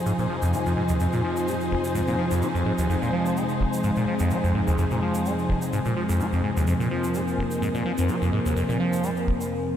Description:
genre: acid house.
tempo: 127 BPM.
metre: 4/4.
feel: swing 53% on 16ths.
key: F minor.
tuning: A4 = 441 Hz.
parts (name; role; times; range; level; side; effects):
lush unison pad; sustained chords; 0.0-9.8 s; F2 to Bb3; -26 LUFS; equal; chorus.
warm symphonic string section; texture; 0.0-9.5 s; F3 to C5; -30 LUFS; left 2 dB; none.
liquid acid bass; riff; 0.1-9.3 s; F1 to Ab3; -26 LUFS; equal; phaser, overdrive, tape echo.
egg shaker; percussion; 0.1-9.5 s; none; -42 LUFS; right 4 dB; none.
room: moderate lush hall reverb, RT60 2.8 s.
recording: dreamy mix soaked in reverb.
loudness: -22 LUFS.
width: side -10 dB against mid.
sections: 0.0-9.8 A section.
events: filter sweep on analog synth pad 0.0-9.8; break 9.5.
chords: 0.0 Fm.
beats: 0.06 0.53 | 1.01 1.48 1.95 2.42 | 2.90 3.37 3.84 4.31 | 4.79 5.26 5.73 6.20 | 6.68 7.15 7.62 8.09 | 8.56 9.04 9.51.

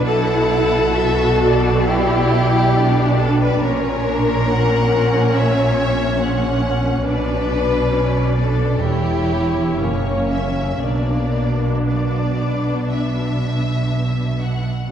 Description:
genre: classical, slow romantic movement for symphony orchestra.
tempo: 57-72 BPM.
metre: 4/4.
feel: rubato.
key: B minor.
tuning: A4 = 440 Hz.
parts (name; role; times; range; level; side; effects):
rich symphonic violin section; melody; 0.0-14.9 s; C#5 to F#5; -27 LUFS; left 4 dB; none.
rich chamber violin section; second line; 0.0-13.9 s; A#3 to C#5; -21 LUFS; left 2 dB; none.
warm chamber viola section; accompaniment; 0.0-14.9 s; C#4 to F#4; -22 LUFS; right 1 dB; none.
rich chamber double bass section; bass; 0.0-14.7 s; E1 to B1; -21 LUFS; right 2 dB; none.
warm chamber cello section; bass; 0.0-14.7 s; E2 to B2; -23 LUFS; right 1 dB; none.
room: wet church reverb, RT60 3.0 s.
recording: dark, warm production.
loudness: -16 LUFS.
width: side -9 dB against mid.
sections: 0.0-14.9 A section.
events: none.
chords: 0.0 Bm; 3.6 F#7/A#; 7.0 Bm; 8.8 C#dim/E; 9.8 F#; 10.8 Bm.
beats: | 0.05 0.95 1.85 2.73 | 3.62 4.49 5.35 6.19 | 7.05 7.91 8.83 9.79 | 10.81 11.86 12.89 13.91 | 14.90.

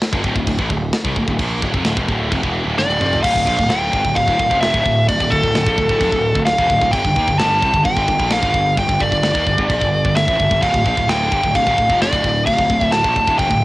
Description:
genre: heavy metal.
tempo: 130 BPM.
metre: 4/4.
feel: straight.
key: D minor.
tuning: A4 = 444 Hz.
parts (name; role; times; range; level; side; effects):
tight metal drum kit; drums; 0.0-13.6 s; crash cymbal, kick drum, snare drum, toms; -22 LUFS; equal; cassette tape.
scooped high-gain guitar; riff; 0.1-13.6 s; D2 to Bb3; -21 LUFS; equal; distortion, cassette tape.
fuzz picked electric bass; bass; 0.1-13.6 s; D1 to Eb2; -22 LUFS; equal; overdrive.
nasal lead guitar with a parked wah; melody; 2.8-13.6 s; A4 to A5; -16 LUFS; equal; overdrive, cassette tape.
room: small room ambience.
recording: home recording on cassette.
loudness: -14 LUFS.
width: side -18 dB against mid.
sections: 0.0-3.2 A section; 3.2-13.6 B section.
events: drum fill 2.8-3.2.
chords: 0.0 Dm; 6.9 G5; 10.6 Dm.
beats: 0.01 0.47 0.93 | 1.39 1.85 2.31 2.78 | 3.24 3.70 4.16 4.62 | 5.08 5.54 6.00 6.47 | 6.93 7.39 7.85 8.31 | 8.78 9.24 9.70 10.16 | 10.62 11.08 11.54 12.01 | 12.47 12.93 13.39.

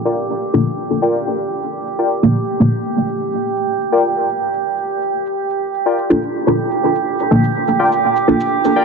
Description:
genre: dub techno.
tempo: 124 BPM.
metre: 4/4.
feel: straight.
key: G minor.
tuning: A4 = 440 Hz.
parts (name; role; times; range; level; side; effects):
drifting glass-harmonics texture; texture; 0.0-8.8 s; G4; -20 LUFS; right 6 dB; chorus, built-in reverb.
warbly lo-fi synth keys; riff; 0.1-8.8 s; F4 to G5; -20 LUFS; left 3 dB; chorus, dub echo.
shaker; drums; 0.2-8.7 s; none; -48 LUFS; left 1 dB; overdrive, studio reverb, dub echo.
filtered dub chord stab; stabs; 0.5-2.7, 6.1-8.4 s; Bb3 to A4; -17 LUFS; equal; phaser, dub echo.
room: moderate huge ambient reverb, RT60 5.5 s.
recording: dense, heavily limited modern master, low-pass filter.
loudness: -15 LUFS.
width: side -5 dB against mid.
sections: 0.0-8.8 A section.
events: filter sweep on synth stab 0.0-8.8; filter sweep 0.0-8.8.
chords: 0.0 Gm7.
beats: 0.29 0.78 | 1.26 1.75 2.23 2.71 | 3.20 3.68 4.17 4.65 | 5.13 5.62 6.10 6.58 | 7.07 7.55 8.04 8.52.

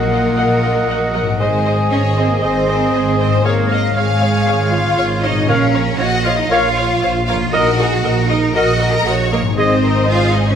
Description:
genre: cinematic, heroic adventure film score.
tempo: 117 BPM.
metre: 4/4.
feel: straight.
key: unclear.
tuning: A4 = 440 Hz.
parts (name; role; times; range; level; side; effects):
rich studio violin section; melody; 0.0-10.6 s; F4 to F5; -24 LUFS; left 3 dB; none.
clear oboe; second line; 0.0-9.8 s; Db5 to Eb5; -26 LUFS; right 1 dB; none.
mellow clarinet; second line; 0.0-9.8 s; Ab4 to Bb4; -26 LUFS; right 1 dB; none.
mellow flute section; second line; 0.0-9.8 s; Eb5 to Ab5; -26 LUFS; left 5 dB; none.
warm symphonic violin section; second line; 0.0-10.6 s; Gb4 to Bb5; -24 LUFS; left 3 dB; none.
dark French horn section; sustained chords; 0.0-9.8 s; Ab4 to Eb5; -25 LUFS; left 4 dB; none.
concert harp; arpeggios; 0.0-10.6 s; Ab2 to Eb5; -24 LUFS; left 7 dB; none.
clear trumpet; stabs; 0.0-9.8 s; Eb5 to Gb5; -24 LUFS; right 2 dB; none.
clear symphonic cello section; bass; 0.0-10.5 s; Gb3 to Bb4; -20 LUFS; right 3 dB; none.
dark studio double bass section; bass; 0.0-10.6 s; Ab1 to Bb1; -19 LUFS; right 2 dB; none.
timpani; percussion; 0.0-0.1, 5.5-6.2 s; Bb2; -25 LUFS; right 6 dB; none.
warm symphonic viola section; accompaniment; 0.1-10.6 s; Bb4 to Gb5; -24 LUFS; equal; none.
room: wet scoring stage reverb, RT60 1.8 s.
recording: none.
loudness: -13 LUFS.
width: side -8 dB against mid.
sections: 0.0-10.6 A section.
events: none.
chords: 0.0 Ebm/Bb; 1.4 Ab; 3.5 Db/Ab; 5.5 Bbm; 7.5 Ebm/Bb; 9.6 Ab.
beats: 0.37 0.89 | 1.41 1.92 2.43 2.94 | 3.46 3.96 4.47 4.98 | 5.49 6.00 6.51 7.02 | 7.53 8.04 8.55 9.07 | 9.58 10.09.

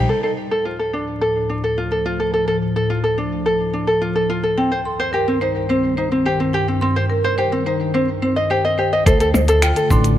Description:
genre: folktronica.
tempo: 107 BPM.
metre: 4/4.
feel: straight.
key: unclear.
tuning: A4 = 441 Hz.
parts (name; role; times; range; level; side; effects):
marimba with hard mallets; second line; 0.0-0.1, 4.6-10.1 s; Bb4 to C6; -23 LUFS; right 1 dB; digital delay.
warbly tape-like pad; sustained chords; 0.0-10.2 s; C2 to F4; -24 LUFS; left 1 dB; chorus, built-in reverb, phaser.
ukulele; arpeggios; 0.0-10.2 s; C4 to Eb5; -19 LUFS; equal; low-pass filter, digital delay.
upright bass; bass; 0.0, 9.1-10.2 s; A1 to D2; -18 LUFS; equal; none.
electronic kick drum; drums; 9.1-10.0 s; none; -16 LUFS; equal; none.
minimal click drum kit; drums; 9.1-10.2 s; finger snaps, hi-hat, percussion blips, shaker; -22 LUFS; equal; low-pass filter on hats, low-pass filter on perc, low-pass filter on snare, low-pass filter on room.
room: light reverb.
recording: vinyl crackle.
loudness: -16 LUFS.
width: side -11 dB against mid.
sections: 0.1-9.1 A section; 9.1-10.2 B section.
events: none.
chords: 0.1 Dm; 4.6 Cm; 9.1 Dm.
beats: | 0.09 0.65 1.21 1.77 | 2.33 2.90 3.46 4.02 | 4.58 5.14 5.70 6.26 | 6.82 7.38 7.94 8.50 | 9.06 9.62.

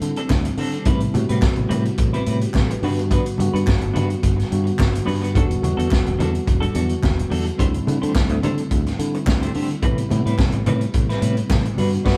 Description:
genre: disco.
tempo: 107 BPM.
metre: 4/4.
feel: straight.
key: A dorian.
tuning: A4 = 440 Hz.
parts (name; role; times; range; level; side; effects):
clean electric guitar; accompaniment; 0.0-12.2 s; G3 to C5; -31 LUFS; equal; tremolo.
mellow tine electric piano; accompaniment; 0.0-12.2 s; C3 to B4; -27 LUFS; equal; overdrive.
fingered electric bass; bass; 0.0-12.2 s; E1 to D3; -25 LUFS; equal; none.
vintage drum kit; drums; 0.0-12.2 s; crash cymbal, hi-hat, kick drum, snare drum; -24 LUFS; equal; none.
congas; percussion; 0.0-11.9 s; none; -31 LUFS; equal; none.
group handclap; percussion; 0.3-11.6 s; none; -38 LUFS; equal; none.
room: moderate stone room reverb, RT60 1.4 s.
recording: band playing live in one room.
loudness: -20 LUFS.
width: mono.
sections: 0.0-12.2 A section.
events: none.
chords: 0.0 D7sus4; 0.9 Am9; 2.8 Gmaj7; 5.3 Em11; 7.6 D7sus4; 9.8 Am9.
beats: 0.30 | 0.86 1.42 1.98 2.54 | 3.11 3.67 4.23 4.79 | 5.35 5.91 6.47 7.03 | 7.59 8.15 8.71 9.26 | 9.82 10.38 10.94 11.50 | 12.05.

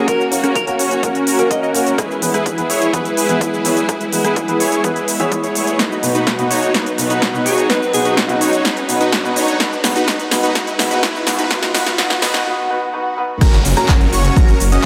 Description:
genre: EDM, festival progressive house.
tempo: 126 BPM.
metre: 4/4.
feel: straight.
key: B major.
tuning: A4 = 439 Hz.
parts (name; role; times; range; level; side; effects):
breathy alto saxophone; melody; 0.0-1.7, 7.5-8.4 s; G#4 to D#5; -24 LUFS; equal; dub echo.
rich symphonic string section; sustained chords; 0.0-14.9 s; F#3 to F#4; -27 LUFS; equal; sidechain pumping.
supersaw chords; riff; 0.0-14.9 s; C#4 to E5; -21 LUFS; equal; sidechain pumping, low-pass filter, dub echo.
riser, swell and downlifter; sound effects; 0.6-14.9 s; none; -30 LUFS; equal; none.
detuned saw bass; bass; 0.1-14.8 s; E1 to G#2; -27 LUFS; equal; none.
big-room dance drum kit; drums; 0.1-14.8 s; crash cymbal, handclaps, hi-hat, rim click, shaker, snare drum; -22 LUFS; equal; none.
electronic kick drum; drums; 0.1-14.5 s; none; -19 LUFS; equal; high-pass filter on kick, high-pass filter on room.
warm baby grand piano; accompaniment; 0.3-13.4 s; B2 to C#5; -24 LUFS; equal; sidechain pumping, dub echo.
plucky unison lead; arpeggios; 13.4-14.9 s; A#5 to D#6; -26 LUFS; equal; subtle chorus, sidechain pumping, dub echo.
room: moderate lush hall reverb, RT60 2.2 s.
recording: high-pass filter.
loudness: -16 LUFS.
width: mono.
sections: 0.0-13.4 A section; 13.4-14.9 B section.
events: build-up 0.0-13.4; filter sweep on supersaw synth 0.0-13.4; drum fill 5.8-12.5; break 12.5-13.4; swell 12.5-13.4; drop 13.4-14.9.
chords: 0.0 F#; 2.0 E; 5.8 B; 9.6 G#m; 13.4 F#.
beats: | 0.08 0.56 1.03 1.51 | 1.98 2.46 2.94 3.41 | 3.89 4.36 4.84 5.32 | 5.79 6.27 6.75 7.22 | 7.70 8.17 8.65 9.13 | 9.60 10.08 10.55 11.03 | 11.51 11.98 12.46 12.94 | 13.41 13.89 14.36 14.84.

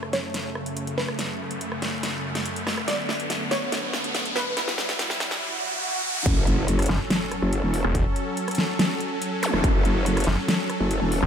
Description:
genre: heavy wobble dubstep.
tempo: 142 BPM.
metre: 4/4.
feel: half-time.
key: F# phrygian.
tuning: A4 = 441 Hz.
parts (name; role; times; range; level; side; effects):
wide unison pluck; melody; 0.0-5.4 s; B4 to D5; -31 LUFS; right 1 dB; tape echo.
supersaw chords; sustained chords; 0.0-11.3 s; F#2 to A4; -29 LUFS; equal; sidechain pumping.
dubstep drum kit; drums; 0.0-11.3 s; crash cymbal, hi-hat, rim click, snare drum; -28 LUFS; equal; high-pass filter on snare, studio reverb, high-pass filter on hats, high-pass filter on cymbals.
riser, swell, impact and zap; sound effects; 1.3-9.5 s; none; -30 LUFS; equal; none.
growl bass; bass; 6.3-11.2 s; E1 to F#1; -23 LUFS; equal; chorus, overdrive.
electronic kick drum; drums; 6.3-9.7 s; none; -22 LUFS; equal; studio reverb.
snarling distorted saw bass; bass; 6.9-11.3 s; E1 to F#1; -22 LUFS; equal; distortion, overdrive.
room: light reverb, digital ambience.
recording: high-pass filter.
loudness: -22 LUFS.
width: side -8 dB against mid.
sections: 0.0-6.3 A section; 6.3-11.3 B section.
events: build-up 0.0-6.3; drum fill 0.0-5.4; filter sweep 0.0-6.3; riser 1.3-6.3; swell 5.4-6.3; drop 6.3-11.3; impact 6.3-7.9.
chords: 0.0 F#m; 2.9 Bm7/F#; 4.6 Emadd9; 6.3 F#m.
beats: 0.34 0.77 | 1.19 1.61 2.03 2.46 | 2.88 3.30 3.72 4.15 | 4.57 4.99 5.41 5.84 | 6.26 6.68 7.10 7.53 | 7.95 8.37 8.79 9.22 | 9.64 10.06 10.48 10.91.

